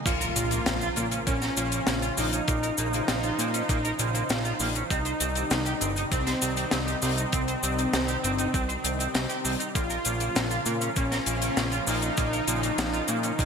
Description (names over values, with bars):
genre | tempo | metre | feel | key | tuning
synthwave | 99 BPM | 4/4 | straight | Bb dorian | A4 = 435 Hz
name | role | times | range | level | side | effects
lush unison pad | sustained chords | 0.0-13.5 s | C3 to C5 | -33 LUFS | equal | chorus, sidechain pumping, shimmer reverb
soft supersaw | melody | 0.1-13.5 s | C4 to F4 | -31 LUFS | equal | ping-pong delay, shimmer reverb
clean electric guitar | riff | 0.1-13.5 s | Bb3 to C5 | -34 LUFS | right 4 dB | lush chorus, ping-pong delay, shimmer reverb
fat analog bass | bass | 0.1-13.5 s | G1 to Bb2 | -31 LUFS | equal | none
deep reggae drum kit | drums | 0.1-13.5 s | cabasa, crash cymbal, hi-hat, snare drum | -30 LUFS | left 2 dB | none
electronic kick drum | drums | 0.1-13.5 s | none | -29 LUFS | equal | none
impact | sound effects | 0.1-2.5 s | none | -38 LUFS | equal | none
room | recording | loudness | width
moderate lush hall reverb, RT60 2.0 s | bright 1980s-style digital production | -24 LUFS | side -6 dB against mid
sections
0.1-13.5 A section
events
impact 0.1-2.5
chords
0.1 Bbm; 4.9 Cm; 9.8 Bbm